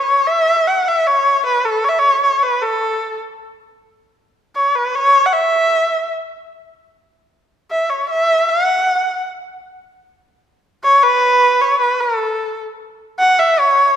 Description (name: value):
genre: chinese traditional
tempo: 76 BPM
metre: 2/4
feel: rubato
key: unclear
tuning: A4 = 440 Hz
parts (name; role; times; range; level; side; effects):
- rich erhu; solo; 0.0-14.0 s; A4 to F#5; -13 LUFS; equal; none
room: moderate scoring stage reverb, RT60 1.6 s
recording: none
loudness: -13 LUFS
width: side -9 dB against mid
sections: 0.3-12.8 A section; 12.8-14.0 B section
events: none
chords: none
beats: | 0.25 1.05 | 1.83 2.61 | 3.38 4.15 | 4.93 5.72 | 6.51 7.31 | 8.10 8.88 | 9.66 10.44 | 11.22 12.01 | 12.81 13.60